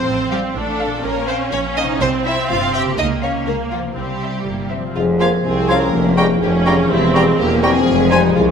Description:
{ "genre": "cinematic", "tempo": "124 BPM", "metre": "2/4", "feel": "straight", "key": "F minor", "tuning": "A4 = 440 Hz", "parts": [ { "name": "rich studio violin section", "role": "second line", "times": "0.0-8.4 s", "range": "Eb4 to G5", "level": "-23 LUFS", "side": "equal", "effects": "none" }, { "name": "rich studio viola section", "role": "accompaniment", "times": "0.0-8.5 s", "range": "Ab3 to D4", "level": "-23 LUFS", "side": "right 2 dB", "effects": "none" }, { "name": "concert harp", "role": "arpeggios", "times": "0.0-8.5 s", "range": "A2 to Bb4", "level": "-23 LUFS", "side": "left 5 dB", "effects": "none" }, { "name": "clear studio cello section", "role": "bass", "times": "0.0-8.5 s", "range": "C2 to G4", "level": "-24 LUFS", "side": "right 2 dB", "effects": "none" }, { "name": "rich studio double bass section", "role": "bass", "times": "0.1-8.5 s", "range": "E1 to Db2", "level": "-24 LUFS", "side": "right 4 dB", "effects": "none" }, { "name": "rich studio violin section", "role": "melody", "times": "0.3-8.2 s", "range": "E5 to Ab5", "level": "-26 LUFS", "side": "left 4 dB", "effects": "none" }, { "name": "marimba with soft mallets", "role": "melody", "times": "5.0-8.5 s", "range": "G4 to Db5", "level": "-21 LUFS", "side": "left 3 dB", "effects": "none" }, { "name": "mellow French horn section", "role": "sustained chords", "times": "5.0-8.5 s", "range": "G3 to Db4", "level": "-22 LUFS", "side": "left 3 dB", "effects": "none" }, { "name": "clear tuba", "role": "bass", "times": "5.0-8.5 s", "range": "E1 to C2", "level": "-22 LUFS", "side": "right 3 dB", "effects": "none" }, { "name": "clear oboe", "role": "second line", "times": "5.2-8.2 s", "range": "Ab5 to Bb5", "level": "-27 LUFS", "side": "right 3 dB", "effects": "none" }, { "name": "concert flute", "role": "second line", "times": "5.2-8.2 s", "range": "C6 to Db6", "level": "-26 LUFS", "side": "equal", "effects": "none" }, { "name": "mellow bassoon", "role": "accompaniment", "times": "5.2-8.2 s", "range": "F3 to G3", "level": "-24 LUFS", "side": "right 1 dB", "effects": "none" } ], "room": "wet scoring stage reverb, RT60 1.6 s", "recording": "minimal, uncompressed stereo recording", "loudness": "-14 LUFS", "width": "side -7 dB against mid", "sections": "0.0-5.0 A section; 5.0-8.5 B section", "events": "none", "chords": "0.1 F/A; 1.0 Gm7b5/Bb; 2.0 C; 3.0 Bbm/Db; 4.0 C; 5.0 Fm; 5.9 Gm7b5/F; 6.9 Edim7; 7.9 Fm", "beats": "| 0.07 0.56 | 1.04 1.52 | 2.01 2.49 | 2.98 3.47 | 3.96 4.46 | 4.95 5.44 | 5.93 6.42 | 6.90 7.39 | 7.87 8.35" }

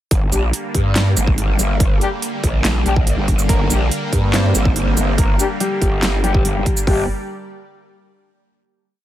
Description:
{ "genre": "heavy wobble dubstep", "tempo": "142 BPM", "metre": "4/4", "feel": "half-time", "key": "G phrygian", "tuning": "A4 = 438 Hz", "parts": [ { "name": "supersaw pad", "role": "sustained chords", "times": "0.1-7.1 s", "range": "D3 to D5", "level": "-24 LUFS", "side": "equal", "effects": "phaser, vintage 12-bit sampler grit, sidechain pumping" }, { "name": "growl bass", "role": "bass", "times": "0.1-7.1 s", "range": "G1 to G2", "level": "-18 LUFS", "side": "equal", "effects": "chorus, overdrive" }, { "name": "big-room dance drum kit", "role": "drums", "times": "0.1-7.0 s", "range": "hi-hat, kick drum", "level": "-18 LUFS", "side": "equal", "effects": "none" }, { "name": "big-room dance drum kit", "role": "drums", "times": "0.1-6.9 s", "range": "handclaps, hi-hat, shaker, snare drum", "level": "-21 LUFS", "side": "right 1 dB", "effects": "none" }, { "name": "mellow brass ensemble", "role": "stabs", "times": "0.3-7.0 s", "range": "G3 to G4", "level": "-25 LUFS", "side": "left 5 dB", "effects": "digital delay" }, { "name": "warm grand piano", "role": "melody", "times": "3.5-7.0 s", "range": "G3 to C5", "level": "-25 LUFS", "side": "left 1 dB", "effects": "digital delay" } ], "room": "little or no reverb", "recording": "none", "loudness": "-15 LUFS", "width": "side -13 dB against mid", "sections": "0.1-6.9 drop; 6.9-8.6 final chord", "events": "drop 0.1-6.9", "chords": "0.1 Gm", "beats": "| 0.11 0.53 0.96 1.38 | 1.80 2.22 2.65 3.07 | 3.49 3.92 4.34 4.76 | 5.18 5.61 6.03 6.45 | 6.87" }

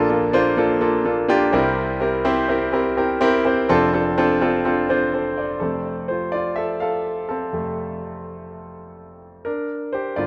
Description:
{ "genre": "pop", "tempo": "125 BPM", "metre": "4/4", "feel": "swing 56% on 16ths", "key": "F major", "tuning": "A4 = 440 Hz", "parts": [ { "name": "clear concert grand piano", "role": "solo", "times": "0.0-10.3 s", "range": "F1 to F5", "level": "-21 LUFS", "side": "equal", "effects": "tape echo" } ], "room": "moderate lush hall reverb, RT60 2.4 s", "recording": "rough home demo mix", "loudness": "-21 LUFS", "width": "mono", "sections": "0.0-5.6 A section; 5.6-10.3 B section", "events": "grand piano solo 5.6-10.3", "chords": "0.0 Bbmaj7; 1.5 C7; 3.7 F6; 5.6 F; 9.5 Gm", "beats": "0.33 0.81 1.29 | 1.77 2.25 2.73 3.21 | 3.69 4.17 4.65 5.13 | 5.61 6.09 6.57 7.05 | 7.53 8.01 8.49 8.97 | 9.45 9.93" }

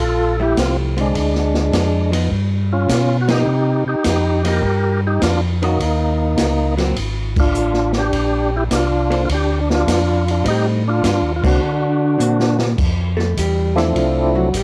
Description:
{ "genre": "soul jazz organ trio", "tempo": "103 BPM", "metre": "4/4", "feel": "swing 69% on 8ths", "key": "unclear", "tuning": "A4 = 440 Hz", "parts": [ { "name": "percussive tonewheel organ", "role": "melody", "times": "0.0-14.5 s", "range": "F3 to Bb4", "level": "-21 LUFS", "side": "equal", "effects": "slow rotary speaker, cassette tape" }, { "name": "mellow tonewheel organ", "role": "bass", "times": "0.0-14.6 s", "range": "Ab1 to D3", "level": "-21 LUFS", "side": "equal", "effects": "slow rotary speaker" }, { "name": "vintage hollow-body jazz guitar", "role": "accompaniment", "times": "0.4-14.6 s", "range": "D3 to C5", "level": "-25 LUFS", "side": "equal", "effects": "none" }, { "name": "open jazz drum kit", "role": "drums", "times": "0.6-14.6 s", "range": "crash cymbal, hi-hat, kick drum, ride cymbal, snare drum", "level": "-25 LUFS", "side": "equal", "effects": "cassette tape" } ], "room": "studio reverb", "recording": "home recording on cassette", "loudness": "-17 LUFS", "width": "mono", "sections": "0.0-12.8 A section; 12.8-14.6 B section", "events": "band accent 3.2, 7.3, 11.3; drum fill 12.2-12.8; hollow-body jazz guitar solo 12.8-14.6", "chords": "0.0 Fmaj9; 1.1 Ddim; 2.3 G7alt; 3.5 Cm11; 5.8 Ebm7; 7.0 Dmadd11; 8.1 Bbadd9; 10.5 Am7b5; 11.6 Daug7; 12.8 Dm9", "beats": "0.57 | 1.15 1.73 2.31 2.89 | 3.47 4.05 4.63 5.22 | 5.80 6.38 6.96 7.54 | 8.12 8.71 9.29 9.87 | 10.45 11.03 11.62 12.20 | 12.78 13.36 13.95 14.53" }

